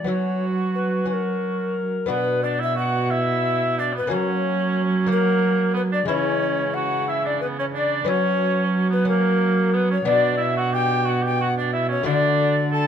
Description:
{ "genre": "classical, renaissance-style consort dance", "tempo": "60 BPM (dotted quarters)", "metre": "6/8", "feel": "straight", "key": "B minor", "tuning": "A4 = 440 Hz", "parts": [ { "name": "tenor recorder", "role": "melody", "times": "0.0-12.9 s", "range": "A#4 to A5", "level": "-24 LUFS", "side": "left 4 dB", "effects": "none" }, { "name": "lute", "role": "accompaniment", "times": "0.0-12.9 s", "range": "B2 to F#4", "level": "-28 LUFS", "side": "left 6 dB", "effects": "none" }, { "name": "warm cello", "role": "bass", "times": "0.0-12.9 s", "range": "B2 to F#3", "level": "-23 LUFS", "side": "right 3 dB", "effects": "none" }, { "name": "warm cor anglais", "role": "second line", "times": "0.1-12.9 s", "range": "A#3 to A4", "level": "-26 LUFS", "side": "right 5 dB", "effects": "none" } ], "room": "wet stone room reverb, RT60 1.3 s", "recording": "dark, warm production", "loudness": "-19 LUFS", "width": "side -8 dB against mid", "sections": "0.0-2.1 A section; 2.1-12.9 A section", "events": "none", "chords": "0.1 F#sus4; 1.1 F#; 2.1 Bm; 4.1 F#; 6.1 C#m; 8.1 F#sus4; 9.1 F#; 10.1 Bm; 12.1 D", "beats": "| 0.08 1.09 | 2.10 3.11 | 4.11 5.10 | 6.09 7.09 | 8.08 9.07 | 10.07 11.06 | 12.06" }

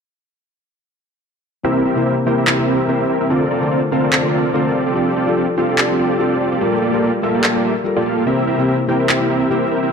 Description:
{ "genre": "future bass", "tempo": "145 BPM", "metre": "4/4", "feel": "swing 55% on 16ths, half-time", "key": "unclear", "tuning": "A4 = 440 Hz", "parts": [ { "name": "felt-muted upright piano", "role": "accompaniment", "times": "1.6-9.6 s", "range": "C3 to C5", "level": "-20 LUFS", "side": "left 3 dB", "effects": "low-pass filter, dub echo" }, { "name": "dense compressed supersaw", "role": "riff", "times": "1.6-9.9 s", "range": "Bb3 to G5", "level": "-16 LUFS", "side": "right 1 dB", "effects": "low-pass filter, dub echo" }, { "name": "electronic handclaps", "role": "drums", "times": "2.5-9.2 s", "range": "none", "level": "-19 LUFS", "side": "equal", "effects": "small room ambience" } ], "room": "moderate lush hall reverb, RT60 1.9 s, small room ambience", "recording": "dark, warm production", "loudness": "-14 LUFS", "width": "side -6 dB against mid", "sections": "1.6-9.9 A section", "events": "none", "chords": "1.6 C7; 3.3 Bbmaj9; 4.7 F69; 6.6 Gm9; 8.3 C7", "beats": "| 1.64 2.06 2.47 2.88 | 3.30 3.71 4.13 4.54 | 4.95 5.37 5.78 6.20 | 6.61 7.02 7.44 7.85 | 8.27 8.68 9.09 9.51" }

